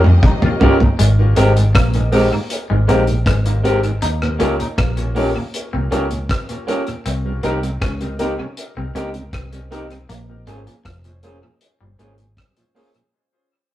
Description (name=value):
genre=lovers rock reggae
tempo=79 BPM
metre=4/4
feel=straight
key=Ab major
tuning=A4 = 440 Hz
part: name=warm studio string section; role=second line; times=0.0-1.0 s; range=Bb3 to Eb5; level=-29 LUFS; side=left 3 dB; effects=none
part: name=twangy electric guitar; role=riff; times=0.0-12.2 s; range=F3 to Eb4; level=-28 LUFS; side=left 2 dB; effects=dub echo
part: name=vintage muted fingered electric bass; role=bass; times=0.0-12.4 s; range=F1 to F2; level=-17 LUFS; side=equal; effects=none
part: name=cloth-damped thuddy drum kit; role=drums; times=0.0-13.1 s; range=hi-hat, kick drum, rim click, toms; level=-18 LUFS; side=equal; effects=none
part: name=mellow tonewheel organ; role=accompaniment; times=0.1-13.0 s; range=Eb2 to G4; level=-26 LUFS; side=right 2 dB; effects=overdrive, chorus vibrato, slow rotary speaker
part: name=clear concert grand piano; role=accompaniment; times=0.6-12.9 s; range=C4 to C5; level=-24 LUFS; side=left 2 dB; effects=dub echo
part: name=electric guitar through a small old amp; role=stabs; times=0.6-12.9 s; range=Ab3 to Ab4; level=-20 LUFS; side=right 1 dB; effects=none
room=moderate stone room reverb, RT60 0.9 s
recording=rough rehearsal-room recording, tube saturation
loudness=-15 LUFS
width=side -14 dB against mid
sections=1.0-13.1 A section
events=drum fill 0.0-1.0; fade-out 1.0-13.1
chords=0.0 Eb7; 1.0 Abmaj7; 4.0 Eb7; 7.1 Cm7; 10.1 Bbm7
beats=0.23 | 0.99 1.75 2.50 3.26 | 4.02 4.78 5.54 6.29 | 7.05 7.81 8.57 9.33 | 10.09 10.85 11.61 12.37